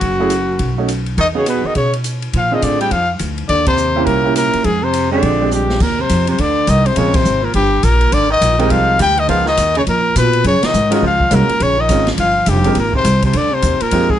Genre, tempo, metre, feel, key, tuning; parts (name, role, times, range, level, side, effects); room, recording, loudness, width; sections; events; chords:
jazz, small-group swing and bop; 207 BPM; 4/4; swing 62% on 8ths; Eb major; A4 = 441 Hz
clear trumpet; melody; 0.0-14.2 s; Gb4 to G5; -16 LUFS; left 3 dB
warm baritone saxophone; second line; 0.0-14.2 s; Gb2 to G3; -20 LUFS; right 4 dB
upright bass; bass; 0.0-14.2 s; F1 to B2; -17 LUFS; equal
open jazz drum kit; drums; 0.0-14.1 s; crash cymbal, hi-hat, kick drum, ride cymbal, snare drum; -23 LUFS; left 1 dB
clear grand piano; accompaniment; 0.2-14.1 s; Ab3 to Bb4; -20 LUFS; right 4 dB
light reverb; nothing above 11.0 kHz; -12 LUFS; side -11 dB against mid
0.0-5.8 A section; 5.8-14.2 B section
band accent 3.6, 7.1, 10.6; drum fill 5.5
0.0 Gbm7; 0.6 B7; 1.2 Emaj7; 2.3 Bb7; 3.5 Eb; 4.1 C7b9; 4.7 Fm; 5.2 Bb13; 5.8 Ebsus2; 7.0 Bbm9; 7.5 Gm; 8.1 Abmaj7; 9.3 Db13; 10.4 Gbmaj9; 11.6 Bbm7; 12.2 Ebadd9; 12.8 Ab